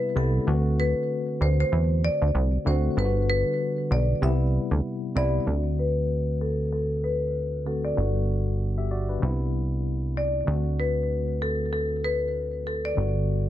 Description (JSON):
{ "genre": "afrobeats", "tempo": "96 BPM", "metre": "4/4", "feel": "swing 58% on 16ths", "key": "D mixolydian", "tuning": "A4 = 440 Hz", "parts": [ { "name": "tine electric piano", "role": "accompaniment", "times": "0.0-13.5 s", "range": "C3 to E5", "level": "-30 LUFS", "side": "left 2 dB", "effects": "medium stereo tremolo, low-pass filter, plate reverb" }, { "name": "marimba with medium hard mallets", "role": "melody", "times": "0.2-13.4 s", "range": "A4 to E5", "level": "-28 LUFS", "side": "left 2 dB", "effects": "low-pass filter, plate reverb, tape echo" }, { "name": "plucky analog bass", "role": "bass", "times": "0.2-13.5 s", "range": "G1 to E2", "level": "-25 LUFS", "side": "right 1 dB", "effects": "none" } ], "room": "light reverb", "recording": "nothing above 10.9 kHz", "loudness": "-23 LUFS", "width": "side -12 dB against mid", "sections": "0.0-5.5 A section; 5.5-13.5 B section", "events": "filter sweep 5.5-13.5", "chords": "0.5 D7; 3.0 Gmaj7; 4.2 Cmaj7; 5.5 D7; 8.0 Gmaj7; 9.2 Cmaj7; 10.5 D7; 13.0 Gmaj7" }